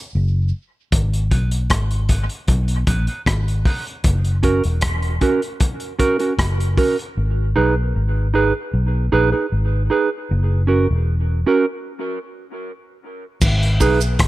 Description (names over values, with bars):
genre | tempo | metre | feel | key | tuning
dub reggae | 77 BPM | 4/4 | straight | G# minor | A4 = 440 Hz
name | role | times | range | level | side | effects
vintage muted fingered electric bass | bass | 0.2-14.3 s | E1 to B1 | -18 LUFS | equal | none
crunchy breakbeat drum kit | drums | 0.9-7.2, 13.4-14.3 s | crash cymbal, hi-hat, kick drum, rim click | -20 LUFS | equal | none
mellow electric guitar | accompaniment | 1.3-14.0 s | C#4 to B4 | -20 LUFS | right 4 dB | high-pass filter, dub echo
cabasa | percussion | 13.4-14.2 s | none | -31 LUFS | right 9 dB | high-pass filter on perc, dub echo
room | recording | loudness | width
small room ambience | none | -16 LUFS | side -17 dB against mid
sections
0.9-13.4 A section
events
break 0.0-0.9; filter sweep 0.0-4.0; drums muted 0.1-0.9; part muted 7.2-13.4; stop 11.9-13.4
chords
0.0 N.C.; 0.9 G#m; 4.0 F#; 7.2 G#m; 10.3 F#; 13.4 G#m